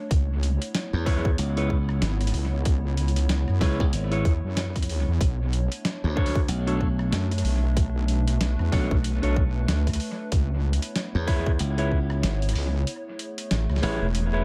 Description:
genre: glitch hop.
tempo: 94 BPM.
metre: 4/4.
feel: swing 58% on 16ths.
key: unclear.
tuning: A4 = 440 Hz.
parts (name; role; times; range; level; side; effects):
warbly tape-like pad; sustained chords; 0.0-14.4 s; A3 to C#5; -37 LUFS; equal; chorus, built-in reverb, sidechain pumping.
wobble bass; bass; 0.1-14.4 s; E1 to F#2; -26 LUFS; equal; chorus, tube saturation.
boom bap sampler-style drum kit; drums; 0.1-14.3 s; hi-hat, rim click, snare drum; -34 LUFS; equal; dub echo.
electronic kick drum; drums; 0.1-12.1 s; none; -26 LUFS; equal; none.
glassy slap bass; bass; 0.9-14.0 s; G#1 to E2; -28 LUFS; equal; none.
clean electric guitar; stabs; 1.1-14.4 s; D4 to C#5; -35 LUFS; equal; sidechain pumping, dub echo.
room: light reverb.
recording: echo-heavy mix.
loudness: -25 LUFS.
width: mono.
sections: 0.0-14.4 A section.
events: kick drops out 12.9-14.4.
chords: 0.1 C#m7; 5.2 Bm9; 10.3 C#m7; 12.9 Amaj7.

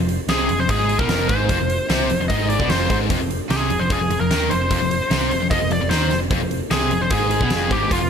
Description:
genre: hard rock.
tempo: 150 BPM.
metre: 4/4.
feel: straight.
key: F minor.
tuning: A4 = 440 Hz.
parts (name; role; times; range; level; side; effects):
overdriven semi-hollow guitar; riff; 0.0-8.1 s; F2 to Eb3; -27 LUFS; right 10 dB; harmonic tremolo.
tight distorted guitar; riff; 0.0-8.1 s; F2 to Eb3; -27 LUFS; left 12 dB; distortion.
tight distorted guitar; riff; 0.0-8.1 s; F2 to Eb3; -27 LUFS; equal; distortion.
picked electric bass; bass; 0.0-8.1 s; F1 to Eb2; -25 LUFS; equal; none.
huge arena drum kit; drums; 0.1-8.0 s; hi-hat, kick drum, snare drum; -23 LUFS; equal; none.
biting lead guitar; melody; 0.3-8.1 s; F4 to Eb5; -22 LUFS; equal; overdrive, digital delay.
room: small room ambience.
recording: none.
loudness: -17 LUFS.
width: side -7 dB against mid.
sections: 0.0-8.1 A section.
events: none.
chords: 0.0 Fm.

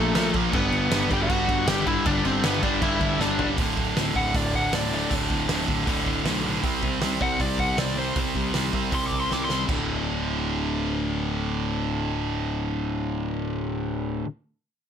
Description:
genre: punk rock.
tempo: 157 BPM.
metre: 4/4.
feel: straight.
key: unclear.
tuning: A4 = 440 Hz.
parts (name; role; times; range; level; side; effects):
bluesy overdriven lead guitar; melody; 0.0-9.6 s; A3 to D6; -27 LUFS; left 2 dB; distortion.
distorted electric guitar; riff; 0.0-14.3 s; D2 to C4; -28 LUFS; right 14 dB; overdrive.
sludgy distorted guitar; riff; 0.0-14.3 s; D2 to C4; -28 LUFS; left 9 dB; overdrive.
fuzz picked electric bass; bass; 0.0-14.2 s; D1 to C2; -30 LUFS; equal; overdrive.
loose indie drum kit; drums; 0.2-9.8 s; crash cymbal, hi-hat, kick drum, snare drum, splash cymbal, toms; -28 LUFS; equal; none.
room: light reverb.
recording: none.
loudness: -22 LUFS.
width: side -8 dB against mid.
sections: 0.0-3.6 A section; 3.6-9.7 B section; 9.7-12.8 C section.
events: drum fill 3.2-3.6, 9.3-9.7; lead electric guitar solo 3.6-9.7.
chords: 0.0 Bb5; 0.5 G; 3.6 D5; 6.6 C5; 9.7 D5.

